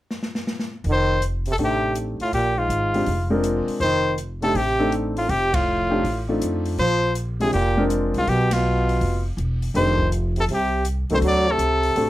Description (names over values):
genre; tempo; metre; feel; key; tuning
jazz, small-group swing and bop; 162 BPM; 4/4; swing 66% on 8ths; F mixolydian; A4 = 440 Hz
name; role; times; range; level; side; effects
open jazz drum kit; drums; 0.1-12.1 s; hi-hat, kick drum, ride cymbal, snare drum; -32 LUFS; equal; none
upright bass; bass; 0.8-12.1 s; E1 to F2; -24 LUFS; equal; none
bright trumpet; melody; 0.9-12.1 s; F4 to D5; -22 LUFS; left 1 dB; none
clear trombone; second line; 0.9-12.1 s; Ab2 to F#3; -26 LUFS; right 3 dB; none
warm grand piano; accompaniment; 1.6-12.1 s; Ab3 to Bb4; -24 LUFS; left 1 dB; none
room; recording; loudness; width
light reverb; none; -19 LUFS; side -15 dB against mid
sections
0.8-12.1 A section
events
drum fill 0.1-0.8; band accent 5.5, 8.5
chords
0.0 N.C.; 0.8 F13; 2.3 Bb9; 3.8 F13; 6.8 Bb13; 8.3 E5; 9.7 F13; 11.2 D7